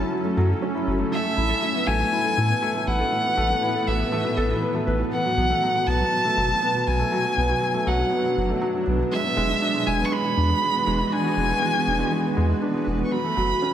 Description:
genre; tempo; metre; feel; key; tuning
piano and strings electronica; 120 BPM; 4/4; straight; A major; A4 = 440 Hz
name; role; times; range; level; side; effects
clear violin; melody; 0.0-13.7 s; E5 to C#6; -24 LUFS; equal; none
granular cloud pad; sustained chords; 0.0-13.7 s; A2 to B4; -29 LUFS; equal; built-in reverb
felt-muted upright piano; riff; 0.0-13.7 s; F#3 to B4; -25 LUFS; right 1 dB; none
warm sub bass; bass; 0.0-13.5 s; E1 to A2; -25 LUFS; equal; none
room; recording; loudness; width
moderate lush hall reverb, RT60 2.1 s; none; -20 LUFS; side -10 dB against mid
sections
0.0-13.7 A section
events
none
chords
0.0 F#m7; 1.1 Asus2; 5.1 Bm7; 9.1 E7; 13.1 F#m

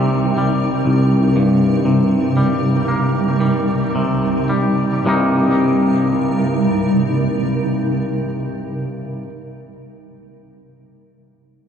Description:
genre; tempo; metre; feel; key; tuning
post-rock; 52-63 BPM; 4/4; straight; C minor; A4 = 443 Hz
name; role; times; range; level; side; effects
granular cloud pad; sustained chords; 0.0-9.2 s; C3 to Bb4; -19 LUFS; right 2 dB; built-in reverb
twangy electric guitar; arpeggios; 0.0-9.3 s; C2 to Eb4; -17 LUFS; left 1 dB; tape echo
room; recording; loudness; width
wet scoring stage reverb, RT60 2.0 s, digital ambience; dark, warm production; -15 LUFS; side -8 dB against mid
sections
0.0-5.1 A section; 5.1-9.6 B section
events
slowing down 0.0-5.1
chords
0.0 Cm7

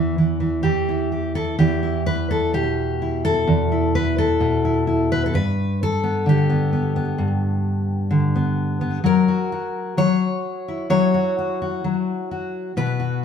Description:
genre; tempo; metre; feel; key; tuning
folk, solo fingerstyle acoustic guitar; 64 BPM; 4/4; straight; E minor; A4 = 440 Hz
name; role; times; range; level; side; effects
fingerpicked steel-string acoustic guitar; solo; 0.0-13.2 s; E2 to C#5; -18 LUFS; left 1 dB; slapback echo
room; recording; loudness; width
moderate large studio reverb, RT60 0.9 s; none; -18 LUFS; side -7 dB against mid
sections
0.0-1.6 A section; 1.6-13.2 B section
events
none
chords
0.0 Em; 1.6 E5; 5.3 G; 9.0 F#7

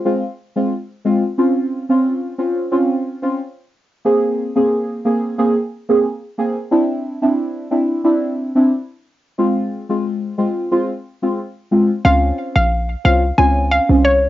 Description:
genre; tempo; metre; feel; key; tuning
dancehall; 90 BPM; 4/4; straight; unclear; A4 = 440 Hz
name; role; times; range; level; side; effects
deep mellow chord stab; accompaniment; 0.0-14.3 s; Ab3 to Ab4; -16 LUFS; equal; chorus, phaser, cassette tape
hollow square pluck; melody; 12.0-14.3 s; Db5 to Ab5; -16 LUFS; equal; chorus, cassette tape
short 808-style bass; bass; 12.1-14.3 s; Bb1 to Db2; -16 LUFS; equal; none
room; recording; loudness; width
light reverb; home recording on cassette, nothing above 7.4 kHz; -15 LUFS; side -14 dB against mid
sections
0.0-12.0 A section; 12.0-14.3 B section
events
none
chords
0.0 Fm; 1.4 Dbmaj7; 4.0 Abadd9; 6.7 Cadd9; 9.4 Fm; 12.0 Dbmaj7

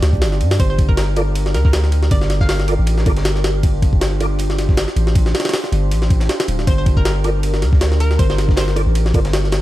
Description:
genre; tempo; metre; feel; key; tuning
drum and bass, jungle; 158 BPM; 4/4; swing 55% on 16ths; G minor; A4 = 440 Hz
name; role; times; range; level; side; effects
warbly tape-like pad; sustained chords; 0.0-9.6 s; D4 to D5; -26 LUFS; right 2 dB; chorus, built-in reverb
long sustained 808-style bass; bass; 0.0-9.6 s; D1 to G2; -17 LUFS; equal; none
jungle sampler-style drum kit; drums; 0.0-9.6 s; hi-hat, kick drum, ride cymbal, snare drum; -17 LUFS; equal; none
crunchy breakbeat drum kit; drums; 0.1-9.6 s; hi-hat, snare drum; -35 LUFS; left 2 dB; none
hollow square pluck; melody; 0.6-2.6, 6.7-8.9 s; Bb4 to F5; -28 LUFS; right 1 dB; chorus, cassette tape, dub echo
mellow tonewheel organ; stabs; 1.2-4.3, 7.2-9.2 s; F4 to D5; -26 LUFS; right 2 dB; chorus vibrato, fast rotary speaker, dub echo
room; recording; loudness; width
little or no reverb; dark, warm production; -14 LUFS; side -15 dB against mid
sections
0.0-9.6 A section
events
none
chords
0.0 Gm7

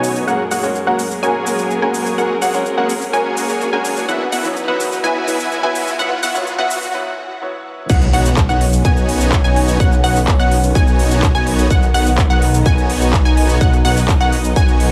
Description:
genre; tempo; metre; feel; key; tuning
EDM, festival progressive house; 126 BPM; 4/4; straight; B major; A4 = 440 Hz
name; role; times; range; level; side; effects
clear baby grand piano; accompaniment; 0.0-7.9 s; B2 to C#5; -26 LUFS; equal; sidechain pumping, delay
dark studio string section; sustained chords; 0.0-14.9 s; E2 to C#5; -27 LUFS; equal; vintage 12-bit sampler grit, sidechain pumping, low-pass filter
unison pluck; arpeggios; 0.0-14.9 s; F#5 to G#5; -24 LUFS; equal; sidechain pumping, delay
dense compressed supersaw; riff; 0.0-14.9 s; A#3 to G#5; -23 LUFS; equal; sidechain pumping, low-pass filter, delay
big-room dance drum kit; drums; 0.0-14.9 s; cabasa, crash cymbal, handclaps, hi-hat; -27 LUFS; equal; small room reverb
riser and impact; sound effects; 0.5-9.8 s; none; -29 LUFS; equal; none
detuned saw bass; bass; 7.9-14.9 s; B1; -20 LUFS; equal; chorus, sidechain pumping
electronic kick drum; drums; 7.9-14.7 s; none; -17 LUFS; equal; small room reverb
room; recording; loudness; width
light reverb; high-pass filter; -15 LUFS; mono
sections
0.0-7.9 A section; 7.9-14.9 B section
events
build-up 0.0-7.9; filter sweep on supersaw synth 0.0-7.9; filter sweep on synth pluck 0.0-7.9; filter sweep 0.0-7.9; break 6.9-7.9; drop 7.9-14.9; impact 7.9-9.8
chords
0.3 F#add9; 4.1 Esus2; 7.9 Badd9

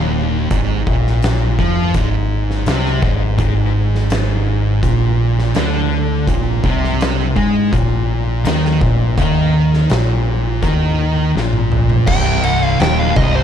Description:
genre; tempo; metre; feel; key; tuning
stoner and doom metal; 83 BPM; 4/4; straight; unclear; A4 = 436 Hz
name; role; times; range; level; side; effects
thick fuzz guitar; riff; 0.0-13.4 s; C2 to Ab3; -20 LUFS; left 10 dB; distortion
thick fuzz guitar; riff; 0.0-13.4 s; C2 to Ab3; -19 LUFS; right 8 dB; distortion
fingered electric bass; bass; 0.0-13.4 s; C1 to Ab2; -19 LUFS; equal; overdrive
oversized low-tuned drum kit; drums; 0.5-13.3 s; crash cymbal, hi-hat, kick drum, ride cymbal, snare drum, toms; -20 LUFS; equal; none
fuzz lead guitar; melody; 12.1-13.4 s; C5 to G5; -18 LUFS; right 2 dB; wah, distortion
room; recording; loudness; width
small room ambience; dark, warm production; -13 LUFS; side -9 dB against mid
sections
0.0-12.1 A section; 12.1-13.4 B section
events
drum fill 11.4-12.1; lead electric guitar solo 12.1-13.4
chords
0.0 N.C.; 0.5 Ab69; 6.3 Bb9sus4; 12.1 Cm

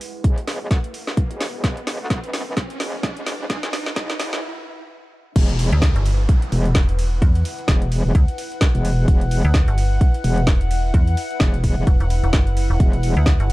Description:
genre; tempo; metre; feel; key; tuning
bass house; 129 BPM; 4/4; swing 57% on 16ths; E minor; A4 = 441 Hz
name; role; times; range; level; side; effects
garage drum kit; drums; 0.0-13.5 s; crash cymbal, hi-hat, ride cymbal, snare drum; -27 LUFS; equal; overdrive, high-pass filter on hats, high-pass filter on snare, high-pass filter on cymbals
riser and downlifter; sound effects; 0.0-9.1 s; none; -33 LUFS; right 1 dB; none
warbly tape-like pad; texture; 0.0-13.5 s; E4 to F#5; -31 LUFS; left 2 dB; chorus, built-in reverb, sidechain pumping
metallic wobble bass; bass; 0.2-13.1 s; E1 to E2; -21 LUFS; equal; chorus, overdrive, sidechain pumping, high-pass filter
electronic kick drum; drums; 0.2-13.4 s; none; -17 LUFS; equal; none
metallic FM bass; bass; 5.7-13.5 s; E1 to E2; -18 LUFS; equal; sidechain pumping
room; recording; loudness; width
little or no reverb; dark, warm production, high-pass filter; -17 LUFS; side -19 dB against mid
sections
0.0-5.4 A section; 5.4-13.5 B section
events
build-up 0.0-5.4; drum fill 0.0-4.4; riser 0.0-4.4; filter sweep 0.0-5.4; stop 4.4-5.4; drop 5.4-13.5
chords
0.0 E5

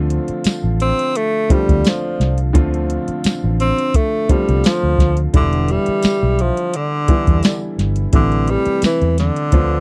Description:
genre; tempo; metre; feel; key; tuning
lush 1970s-style soul; 86 BPM; 4/4; swing 54% on 16ths; D dorian; A4 = 442 Hz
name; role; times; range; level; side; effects
warm baby grand piano; accompaniment; 0.0-9.8 s; C3 to F4; -25 LUFS; equal; none
vintage muted fingered electric bass; bass; 0.0-9.8 s; E1 to E2; -20 LUFS; equal; none
soft vintage rhythm box; drums; 0.1-9.7 s; hi-hat, kick drum, snare drum; -18 LUFS; equal; none
tambourine; percussion; 0.5-9.0 s; none; -37 LUFS; equal; none
breathy tenor saxophone; melody; 0.8-9.8 s; D3 to C4; -21 LUFS; equal; none
vibraphone with hard mallets; texture; 1.5-9.8 s; B4 to E5; -33 LUFS; equal; none
room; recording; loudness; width
little or no reverb; dry, close 1970s-style studio recording; -17 LUFS; mono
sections
0.0-9.8 A section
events
none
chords
0.0 Dm7; 5.3 Em7; 8.1 Am7

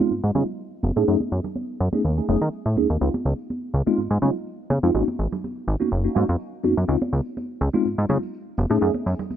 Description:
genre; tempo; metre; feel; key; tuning
filtered disco house; 124 BPM; 4/4; swing 53% on 16ths; Db major; A4 = 440 Hz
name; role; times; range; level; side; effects
mellow tine electric piano; accompaniment; 0.0-8.9 s; Ab3 to Ab4; -24 LUFS; equal; medium stereo tremolo, phaser, low-pass filter
tambourine and congas; percussion; 0.0-9.4 s; none; -30 LUFS; right 2 dB; low-pass filter on perc
plucky analog bass; bass; 0.1-9.1 s; Gb1 to Eb3; -21 LUFS; equal; low-pass filter
room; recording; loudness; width
light reverb, small room ambience; none; -21 LUFS; side -10 dB against mid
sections
0.0-9.4 A section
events
filter sweep 0.0-9.4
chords
0.0 Dbmaj9; 0.8 Gbm6; 3.0 Dbmaj9; 4.9 Ab9sus4; 6.9 Dbmaj9; 8.6 Gbm6

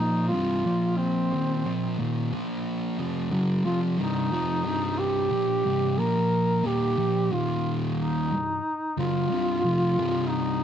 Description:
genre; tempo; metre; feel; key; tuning
metal; 90 BPM; 4/4; straight; C minor; A4 = 440 Hz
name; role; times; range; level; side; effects
warm duduk; melody; 0.0-10.6 s; C4 to Bb4; -27 LUFS; equal; none
fuzz guitar; riff; 0.0-10.6 s; C2 to Bb3; -25 LUFS; equal; distortion
room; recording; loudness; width
light reverb, small room ambience; dark, warm production; -23 LUFS; side -9 dB against mid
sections
0.0-4.0 A section; 4.0-10.6 B section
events
none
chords
0.0 Cm; 0.6 Bb5; 1.3 Cm; 2.3 Bb5; 3.0 Dbmaj7/F; 4.0 Cm; 6.0 Bb5; 6.7 Ebadd9; 7.3 Eb5; 8.3 Cm

